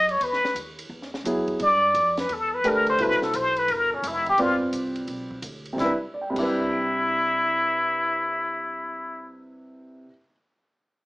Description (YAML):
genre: jazz, small-group swing and bop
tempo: 172 BPM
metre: 4/4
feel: swing 65% on 8ths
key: C major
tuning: A4 = 440 Hz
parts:
  - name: trumpet with plunger mute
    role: melody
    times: 0.0-9.3 s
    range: Db4 to D#5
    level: -22 LUFS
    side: left 1 dB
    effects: plate reverb
  - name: upright bass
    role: bass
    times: 0.0-10.0 s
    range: F1 to G2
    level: -40 LUFS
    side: equal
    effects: none
  - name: compact cocktail drum kit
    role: drums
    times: 0.1-6.4 s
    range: crash cymbal, hi-hat, kick drum, ride cymbal, snare drum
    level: -37 LUFS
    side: equal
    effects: none
  - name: warm upright piano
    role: accompaniment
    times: 1.3-10.3 s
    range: B2 to D7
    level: -27 LUFS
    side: right 1 dB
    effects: none
room: moderate club reverb, RT60 0.5 s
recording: small speaker sound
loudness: -21 LUFS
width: side -20 dB against mid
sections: 0.0-5.8 A section; 5.8-8.6 B section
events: none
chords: 0.2 Emaj7; 1.6 G7; 3.0 Cmaj7